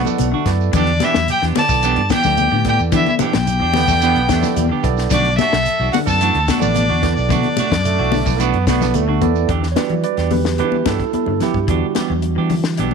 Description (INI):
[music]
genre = afrobeat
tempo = 110 BPM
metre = 4/4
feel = straight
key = E minor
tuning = A4 = 442 Hz
[part]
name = rich violin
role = melody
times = 0.0-8.9 s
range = D5 to A5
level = -19 LUFS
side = left 2 dB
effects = none
[part]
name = brilliant trumpet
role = second line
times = 0.0-8.9 s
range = D4 to D5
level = -28 LUFS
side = right 14 dB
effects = none
[part]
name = clean electric guitar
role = stabs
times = 0.0-12.9 s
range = E3 to G4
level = -24 LUFS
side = right 14 dB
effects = none
[part]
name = fingered electric bass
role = bass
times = 0.0-12.9 s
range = A1 to E3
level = -20 LUFS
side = equal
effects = none
[part]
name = brilliant bass trombone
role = second line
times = 0.1-9.5 s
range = G3 to B3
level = -24 LUFS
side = right 13 dB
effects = none
[part]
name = barky tine electric piano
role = accompaniment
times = 0.1-12.9 s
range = G3 to D5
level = -23 LUFS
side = right 15 dB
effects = overdrive, auto-pan
[part]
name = congas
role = percussion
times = 0.1-12.9 s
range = none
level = -22 LUFS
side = left 14 dB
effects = none
[part]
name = shekere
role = percussion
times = 0.1-9.5 s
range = none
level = -29 LUFS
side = right 10 dB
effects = none
[part]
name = compact cocktail drum kit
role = drums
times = 0.2-12.9 s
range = hi-hat, kick drum, snare drum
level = -23 LUFS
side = left 4 dB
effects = none
[part]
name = semi-hollow electric guitar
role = arpeggios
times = 0.3-12.9 s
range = D3 to F#3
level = -26 LUFS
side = left 15 dB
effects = ensemble chorus
[sound]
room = small room ambience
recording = 1960s-style stereo with parts hard left and right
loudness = -14 LUFS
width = side -6 dB against mid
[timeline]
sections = 0.0-9.5 A section; 9.5-12.9 B section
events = tine electric piano solo 9.5-12.9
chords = 0.0 Bm7; 0.7 Em7; 5.1 Bm7; 9.5 Em7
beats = 0.19 | 0.74 1.28 1.83 2.38 | 2.93 3.48 4.02 4.57 | 5.12 5.67 6.21 6.76 | 7.31 7.86 8.40 8.95 | 9.50 10.04 10.59 11.14 | 11.69 12.24 12.78